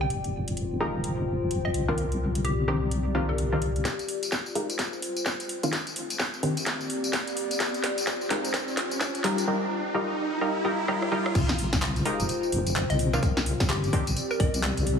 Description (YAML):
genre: UK garage, two-step garage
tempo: 128 BPM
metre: 4/4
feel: swing 60% on 16ths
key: F dorian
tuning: A4 = 439 Hz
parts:
  - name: hollow square pluck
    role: melody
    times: 0.0-3.9, 12.9-14.6 s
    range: G4 to G5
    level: -34 LUFS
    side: left 1 dB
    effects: analog chorus, digital delay
  - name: deep soft wobble bass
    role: bass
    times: 0.0-3.8, 11.4-15.0 s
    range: F1 to C2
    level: -27 LUFS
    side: equal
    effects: chorus, sidechain pumping
  - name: warbly tape-like pad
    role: texture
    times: 0.0-15.0 s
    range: C4 to G5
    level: -33 LUFS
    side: left 2 dB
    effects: chorus, built-in reverb, sidechain pumping
  - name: garage drum kit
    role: drums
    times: 0.1-15.0 s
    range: crash cymbal, handclaps, hi-hat, rim click, snare drum, tambourine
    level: -30 LUFS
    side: equal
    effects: high-pass filter on hats, high-pass filter on snare, high-pass filter on perc, high-pass filter on cymbals
  - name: punchy chord stab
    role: stabs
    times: 0.8-14.0 s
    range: Eb3 to Bb4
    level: -30 LUFS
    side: equal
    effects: chorus, cassette tape, digital delay
  - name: electronic kick drum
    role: drums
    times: 3.9-14.5 s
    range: none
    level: -28 LUFS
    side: equal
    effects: overdrive, high-pass filter on kick
  - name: riser and sub drop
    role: sound effects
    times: 5.1-13.2 s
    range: none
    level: -34 LUFS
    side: right 1 dB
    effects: none
room: moderate lush hall reverb, RT60 2.0 s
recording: heavily compressed radio sound, studio ambience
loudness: -25 LUFS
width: side -6 dB against mid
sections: 0.0-3.9 A section; 3.9-11.4 B section; 11.4-15.0 C section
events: build-up 3.9-11.4; drum fill 3.9-9.5, 10.9-11.4; filter sweep on synth stab 3.9-11.4; riser 5.1-11.4; drop 11.4-15.0; impact 11.4-13.2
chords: 0.1 Fm11; 1.7 Cm11; 3.9 Fm11; 5.5 Cm11; 7.6 Fm11; 9.2 Cm7; 11.4 Fm11; 13.0 Cm11